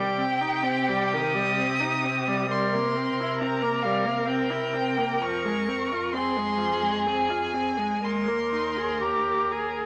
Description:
classical, slow romantic movement for string quartet; 60-68 BPM; 3/4; rubato; A4 = 440 Hz
rich violin; melody; 0.0-9.9 s; F5 to Eb6; -32 LUFS; equal
rich violin; second line; 0.0-9.9 s; G4 to Bb4; -31 LUFS; equal
rich viola; accompaniment; 0.0-9.9 s; Eb3 to Ab4; -30 LUFS; equal
rich cello; bass; 0.0-9.9 s; Eb2 to C3; -37 LUFS; equal
moderate studio reverb, RT60 1.0 s; -26 LUFS; mono
0.0-9.9 A section
0.0 Cm; 2.5 C7; 5.2 Fm; 8.0 Ebsus4
0.66 1.58 | 2.49 3.38 4.28 | 5.22 6.13 7.05 | 8.02 9.02

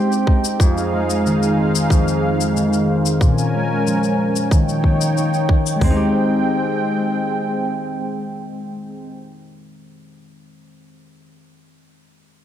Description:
folktronica; 92 BPM; 4/4; straight; Ab major; A4 = 440 Hz
warm analog pad; sustained chords; 0.0-9.2 s; Ab3 to Ab5; -22 LUFS; right 2 dB; chorus, tremolo
concert harp; arpeggios; 0.0-11.6 s; F2 to G4; -19 LUFS; left 1 dB; low-pass filter, tape echo
cabasa; drums; 0.1-5.8 s; -28 LUFS; left 12 dB; overdrive
organic electronic drum kit; drums; 0.3-6.0 s; hi-hat, kick drum, toms; -15 LUFS; equal; overdrive
moderate recital hall reverb, RT60 1.6 s; dark, warm production; -16 LUFS; side -10 dB against mid
0.0-5.8 A section; 5.8-8.4 B section
filter sweep on harp 0.0-5.8
0.0 Abmaj7; 0.6 Fm7; 3.2 Bbm7; 4.5 Eb7; 5.8 Abmaj7
| 0.60 1.25 1.90 2.56 | 3.21 3.86 4.51 5.16 | 5.82 6.47 7.12 7.77

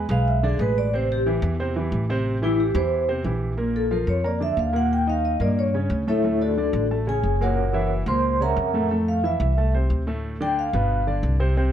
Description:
Afro-Cuban jazz; 180 BPM; 4/4; straight; A4 = 440 Hz
vibraphone with medium mallets; melody; 0.0-11.0 s; D4 to C6; -24 LUFS; equal; plate reverb
warm grand piano; accompaniment; 0.0-11.7 s; A2 to Bb5; -26 LUFS; right 1 dB
upright bass; bass; 0.0-11.7 s; F#1 to G2; -24 LUFS; equal
light reverb; dark, warm production; -20 LUFS; side -10 dB against mid
0.0-3.6 A section; 3.6-11.7 A section
vibraphone solo 0.0-11.7
0.0 E7 (rootless); 0.9 Am7; 3.6 Bb; 4.9 D#7; 6.2 Dmaj9; 7.6 F#7; 8.9 Fmaj7; 10.2 Dm; 10.9 G
0.27 0.60 | 0.93 1.26 1.59 1.92 | 2.25 2.59 2.92 3.25 | 3.58 3.92 4.25 4.58 | 4.91 5.25 5.58 5.91 | 6.24 6.58 6.91 7.24 | 7.58 7.91 8.24 8.57 | 8.91 9.24 9.57 9.91 | 10.24 10.57 10.91 11.24 | 11.57

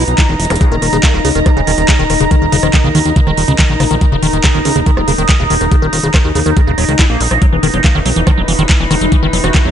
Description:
psychedelic trance; 141 BPM; 4/4; straight; A4 = 438 Hz
overtone-sweeping drone; sustained chords; 0.0-9.7 s; Eb4; -18 LUFS; left 1 dB; chorus, built-in reverb, phaser, sidechain pumping
liquid acid bass; riff; 0.0-9.7 s; Db3 to Fb4; -17 LUFS; moving between left 4 dB and right 4 dB; phaser, auto-pan, sidechain pumping, digital delay
fat analog bass; bass; 0.0-9.7 s; Eb1 to E2; -16 LUFS; equal
swell and zap; sound effects; 0.0-0.6 s; -24 LUFS; equal
dark studio string section; texture; 0.0-9.7 s; E3 to B5; -21 LUFS; right 3 dB; sidechain pumping
garage drum kit; drums; 0.1-9.6 s; handclaps, hi-hat, rim click; -18 LUFS; right 1 dB; overdrive
electronic kick drum; drums; 0.2-9.6 s; -11 LUFS; equal; overdrive
resonant blip pluck; second line; 1.0-3.2, 7.8-9.6 s; Bb3 to Gb4; -27 LUFS; right 2 dB; phaser, ensemble chorus, sidechain pumping, high-pass filter, tape echo
light reverb, digital ambience; nothing above 11.0 kHz; -9 LUFS; side -9 dB against mid
0.0-9.7 A section
swell 0.0-0.6; drum fill 0.4
0.0 E5; 0.6 Eb5; 7.4 E5
0.18 | 0.61 1.03 1.46 1.89 | 2.31 2.74 3.16 3.59 | 4.01 4.44 4.86 5.29 | 5.71 6.14 6.57 6.99 | 7.42 7.84 8.27 8.69 | 9.12 9.54

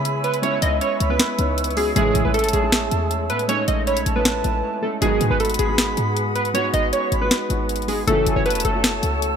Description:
hip hop, trap; 157 BPM; 4/4; half-time; C# minor; A4 = 440 Hz
warbly lo-fi synth keys; melody; 0.0-9.4 s; G#4 to D#5; -23 LUFS; right 1 dB; chorus, ping-pong delay
concert flute; second line; 0.0-9.4 s; G#5 to C#6; -30 LUFS; right 2 dB; ping-pong delay
dark baby grand piano; accompaniment; 0.0-9.4 s; G#3 to G#4; -26 LUFS; right 1 dB
flute section; sustained chords; 0.0-9.4 s; B4 to E6; -29 LUFS; right 1 dB
short 808-style bass; bass; 0.0-9.4 s; E1 to C#3; -24 LUFS; left 1 dB
trap drum kit; drums; 0.1-9.3 s; hi-hat, snare drum; -23 LUFS; left 2 dB
mellow synth brass; stabs; 2.0-2.3, 5.0-5.4, 8.1-8.4 s; B1 to E3; -29 LUFS; equal; chorus, ping-pong delay
light reverb, small room reverb; bright 1980s-style digital production; -18 LUFS; side -7 dB against mid
0.0-9.4 A section
break 4.6-5.0
0.0 C#m7; 2.0 Amaj7; 5.0 G#m7; 8.1 F#m7
0.05 | 0.43 0.81 1.20 1.58 | 1.96 2.34 2.72 3.11 | 3.49 3.87 4.25 4.63 | 5.02 5.40 5.78 6.16 | 6.55 6.93 7.31 7.69 | 8.07 8.46 8.84 9.22

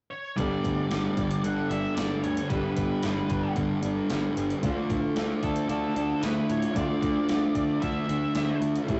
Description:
rock, shoegaze and dream pop; 113 BPM; 4/4; straight; A4 = 440 Hz
octave-fuzz lead guitar; melody; 0.1-8.6 s; A4 to F#5; -38 LUFS; equal; distortion, analog delay
picked twelve-string acoustic guitar; arpeggios; 0.4-9.0 s; E3 to A4; -40 LUFS; equal
electric guitar through a small old amp; riff; 0.4-9.0 s; A2 to A4; -38 LUFS; equal
thick fuzz guitar; riff; 0.4-9.0 s; G2 to D4; -30 LUFS; equal; distortion
fuzz picked electric bass; bass; 0.4-9.0 s; G1 to A2; -36 LUFS; equal; overdrive
clean 12-bit digital drum machine; drums; 0.4-9.0 s; hi-hat, kick drum, snare drum; -36 LUFS; equal; overdrive
wet small room reverb, RT60 0.5 s; rough rehearsal-room recording, warm saturation, nothing above 7.9 kHz; -27 LUFS; mono
0.4-9.0 A section
0.4 Gadd9; 4.6 Dm
| 0.38 0.91 1.44 1.97 | 2.50 3.03 3.56 4.10 | 4.63 5.16 5.69 6.22 | 6.75 7.29 7.82 8.35 | 8.88

